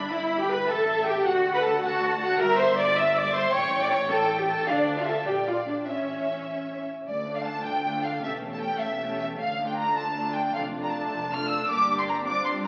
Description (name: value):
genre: quick classical-period movement for string orchestra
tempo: 104 BPM (dotted quarters)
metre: 6/8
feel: straight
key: D minor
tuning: A4 = 440 Hz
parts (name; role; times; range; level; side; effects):
- warm symphonic violin section; melody; 0.0-12.7 s; D5 to F6; -31 LUFS; equal; none
- rich studio viola section; accompaniment; 0.0-12.7 s; A3 to E5; -31 LUFS; equal; none
- dark studio double bass section; bass; 0.0-12.7 s; E1 to G2; -41 LUFS; equal; none
- warm symphonic cello section; bass; 0.0-12.7 s; D2 to E5; -33 LUFS; equal; none
- warm chamber violin section; second line; 0.1-12.7 s; F4 to E6; -35 LUFS; equal; none
room: wet recital hall reverb, RT60 1.7 s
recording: very old 78 rpm record, vinyl crackle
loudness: -26 LUFS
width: mono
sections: 0.0-7.1 A section; 7.1-12.7 B section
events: none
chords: 0.1 Em/G; 0.7 A5; 1.2 D; 2.4 Em7b5/G; 3.5 A7; 4.7 Dm; 5.3 Bb; 5.9 A; 7.1 Dm; 8.2 A7/E; 9.4 Dm; 10.5 Dm/F; 11.7 Gm7